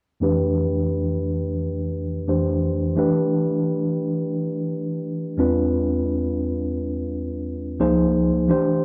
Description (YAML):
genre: R&B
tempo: 87 BPM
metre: 4/4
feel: swing 58% on 16ths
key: unclear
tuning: A4 = 438 Hz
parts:
  - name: mellow tine electric piano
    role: solo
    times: 0.2-8.8 s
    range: Db2 to C5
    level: -23 LUFS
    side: equal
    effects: low-pass filter
room: moderate small room reverb, RT60 0.5 s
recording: none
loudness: -23 LUFS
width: mono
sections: 0.2-8.8 A section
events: filter sweep on tine electric piano 0.2-8.8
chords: 0.2 F69; 3.0 Gadd9; 5.4 E7b9b13; 7.8 Dbmaj9